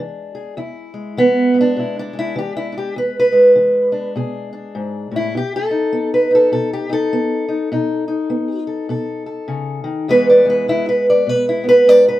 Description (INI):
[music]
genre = acoustic country blues, solo or duo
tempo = 101 BPM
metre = 4/4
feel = swing 60% on 8ths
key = unclear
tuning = A4 = 441 Hz
[part]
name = fingerpicked steel-string acoustic guitar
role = solo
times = 0.0-12.2 s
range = E2 to D5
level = -14 LUFS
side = equal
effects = none
[sound]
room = light reverb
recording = band playing live in one room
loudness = -14 LUFS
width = side -15 dB against mid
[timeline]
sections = 0.0-12.2 A section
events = none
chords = 0.0 E7; 5.3 B7; 10.1 E